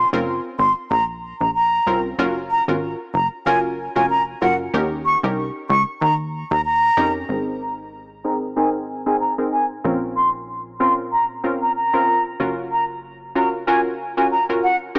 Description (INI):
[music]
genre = dancehall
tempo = 94 BPM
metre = 4/4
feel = swing 56% on 16ths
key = unclear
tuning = A4 = 438 Hz
[part]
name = concert flute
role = melody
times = 0.0-14.8 s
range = Gb5 to Db6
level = -19 LUFS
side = equal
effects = low-pass filter, digital delay
[part]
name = plucky analog bass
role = bass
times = 0.0-14.9 s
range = F1 to F2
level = -26 LUFS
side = equal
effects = none
[part]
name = glassy wavetable pluck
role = accompaniment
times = 0.1-15.0 s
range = C4 to Bb4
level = -22 LUFS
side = equal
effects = chorus, low-pass filter
[sound]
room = moderate lush hall reverb, RT60 2.5 s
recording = small speaker sound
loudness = -18 LUFS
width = side -34 dB against mid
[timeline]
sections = 0.0-7.3 A section; 7.3-15.0 B section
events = filter sweep 7.3-15.0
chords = 0.0 Bbmadd9; 2.2 Gbmaj7; 4.7 Eb7; 7.3 Abadd9; 9.8 Bbmadd9; 12.4 Gbmaj7